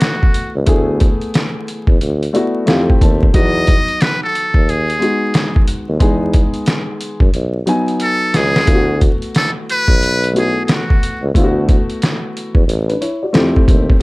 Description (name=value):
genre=hip hop, jazz-hop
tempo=90 BPM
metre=4/4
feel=swing 64% on 16ths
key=unclear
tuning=A4 = 440 Hz
part: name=trumpet with metal mute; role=melody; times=0.0-11.3 s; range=F#4 to D#5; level=-18 LUFS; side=equal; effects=none
part: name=dark concert grand piano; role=accompaniment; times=0.0-14.0 s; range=F#3 to A5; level=-19 LUFS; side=left 1 dB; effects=none
part: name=trip hop sampler-style drum kit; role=drums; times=0.0-14.0 s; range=hi-hat, kick drum, snare drum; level=-14 LUFS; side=equal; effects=none
part: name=warm tuba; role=bass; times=0.6-13.9 s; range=A1 to F#2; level=-18 LUFS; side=equal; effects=none
room=little or no reverb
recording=vinyl crackle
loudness=-12 LUFS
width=side -23 dB against mid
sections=0.0-14.0 A section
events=grand piano fill 2.0-3.3; drum fill 8.0-8.7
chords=0.0 D6; 2.7 Fmaj9; 3.3 Emaj9; 8.7 D6; 13.3 Fmaj9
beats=0.01 | 0.68 1.34 2.01 2.68 | 3.35 4.01 4.68 5.34 | 6.01 6.68 7.34 8.01 | 8.68 9.35 10.01 10.68 | 11.35 12.01 12.68 13.35 | 14.01